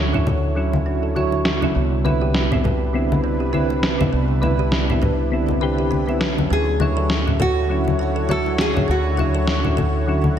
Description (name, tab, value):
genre	sunset chillout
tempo	101 BPM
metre	4/4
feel	swing 57% on 16ths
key	unclear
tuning	A4 = 441 Hz
part	soft electric-piano-like synth keys	accompaniment	0.0-10.4 s	D3 to C#5	-24 LUFS	right 2 dB	chorus, tremolo, auto-pan, digital delay
part	lush unison pad	sustained chords	0.0-10.4 s	C3 to C#5	-26 LUFS	equal	chorus
part	mellow fretless electric bass	bass	0.0-10.4 s	C2 to D2	-22 LUFS	equal	ensemble chorus
part	congas and bongos	percussion	0.1-10.3 s	none	-25 LUFS	left 3 dB	none
part	kalimba	arpeggios	0.3-9.9 s	B3 to C#5	-28 LUFS	right 3 dB	vintage 12-bit sampler grit, low-pass filter, digital delay
part	electronic snare drum	drums	1.5-9.6 s	none	-24 LUFS	equal	low-pass filter on perc, low-pass filter on snare, low-pass filter on room
part	nylon-string guitar	melody	6.5-10.0 s	F#4 to A4	-24 LUFS	right 1 dB	digital delay
room	moderate concert hall reverb, RT60 2.0 s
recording	none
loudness	-17 LUFS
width	side -9 dB against mid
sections	0.0-10.4 A section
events	filter sweep on kalimba 0.0-10.4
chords	0.0 Dmaj9; 1.8 Cmaj9; 6.5 Dmaj9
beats	0.57 1.16 | 1.75 2.35 2.94 3.54 | 4.13 4.72 5.32 5.91 | 6.51 7.10 7.70 8.29 | 8.88 9.48 10.07